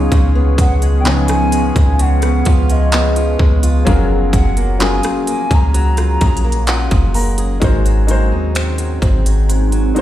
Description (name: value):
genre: contemporary R&B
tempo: 64 BPM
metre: 4/4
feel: straight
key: unclear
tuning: A4 = 441 Hz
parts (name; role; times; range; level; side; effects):
- warm baby grand piano; accompaniment; 0.0-10.0 s; Db3 to Bb5; -22 LUFS; left 3 dB; none
- deep dark ambient pad; sustained chords; 0.0-10.0 s; Eb3 to Ab4; -22 LUFS; equal; chorus, built-in reverb, sidechain pumping
- fingerpicked swing-style acoustic guitar; arpeggios; 0.0-10.0 s; Ab2 to Ab4; -25 LUFS; right 2 dB; digital delay
- soft 808-style bass; bass; 0.0-9.9 s; Gb1 to Eb2; -15 LUFS; equal; none
- soft synth bell; texture; 0.0-7.2 s; Eb6; -36 LUFS; right 3 dB; none
- trap drum kit; drums; 0.1-10.0 s; finger snaps, handclaps, hi-hat, kick drum, rim click; -16 LUFS; equal; overdrive
- gliding portamento lead; melody; 0.6-7.2 s; Eb5 to Bb5; -22 LUFS; equal; chorus
room: digital ambience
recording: played on a big sound system in a bare room, stone room reverb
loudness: -12 LUFS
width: side -13 dB against mid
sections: 0.0-7.6 A section; 7.6-10.0 B section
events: grand piano fill 6.2-7.6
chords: 0.0 Db7; 3.9 Gbmaj9; 7.6 Ab7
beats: | 0.12 1.05 1.99 2.93 | 3.87 4.80 5.74 6.68 | 7.62 8.55 9.49